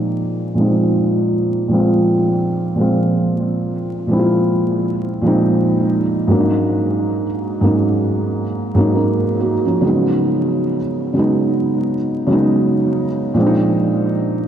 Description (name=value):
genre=hip hop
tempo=68 BPM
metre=4/4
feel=swing 59% on 16ths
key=Bb minor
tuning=A4 = 440 Hz
part: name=felt-muted upright piano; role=solo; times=0.0-14.5 s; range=Ab2 to Bb4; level=-14 LUFS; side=right 1 dB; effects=cassette tape, low-pass filter, analog delay
room=wet lush hall reverb, RT60 3.2 s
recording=dreamy mix soaked in reverb, vinyl crackle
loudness=-14 LUFS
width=side -9 dB against mid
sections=0.0-13.4 A section; 13.4-14.5 B section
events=filter sweep on felt piano 0.0-13.4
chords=0.0 Bb9sus4; 6.3 Ab9sus4; 9.8 Db9sus4; 13.4 Bb9sus4